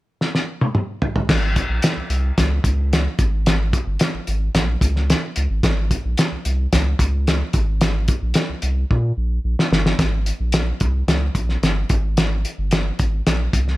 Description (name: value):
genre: uptempo 1960s-style soul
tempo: 110 BPM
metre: 4/4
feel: straight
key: Ab major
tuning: A4 = 441 Hz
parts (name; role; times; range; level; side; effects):
- cloth-damped thuddy drum kit; drums; 0.2-13.7 s; crash cymbal, hi-hat, kick drum, snare drum, toms; -19 LUFS; equal; none
- warm sub bass; bass; 1.3-13.8 s; G1 to Bb2; -20 LUFS; equal; none
room: little or no reverb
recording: none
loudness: -17 LUFS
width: side -18 dB against mid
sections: 0.0-1.3 A section; 1.3-10.0 B section; 10.0-13.8 C section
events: drum fill 0.2-1.3, 8.9-10.0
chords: none